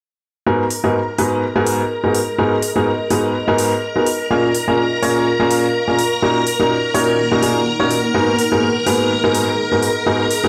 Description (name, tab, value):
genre	piano house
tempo	125 BPM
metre	4/4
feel	swing 55% on 16ths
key	G# dorian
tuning	A4 = 444 Hz
part	string machine, violins	sustained chords	0.5-10.5 s	A#4 to A#5	-23 LUFS	equal	ensemble chorus
part	clear upright piano	riff	0.5-10.5 s	G#2 to C#5	-19 LUFS	equal	analog delay
part	granular cloud pad	texture	1.9-10.5 s	A#3 to C#6	-27 LUFS	equal	built-in reverb
part	electronic hi-hat	drums	0.7-10.4 s	none	-28 LUFS	equal	small room ambience
room	light reverb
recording	dry, gritty hardware recording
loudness	-17 LUFS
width	mono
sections	0.5-10.5 A section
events	none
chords	0.5 G#m9; 4.1 A#m7; 6.0 D#m7/A#; 8.1 G#m9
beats	| 0.47 0.95 1.43 1.91 | 2.39 2.87 3.35 3.83 | 4.31 4.79 5.27 5.75 | 6.23 6.71 7.19 7.67 | 8.15 8.63 9.11 9.59 | 10.07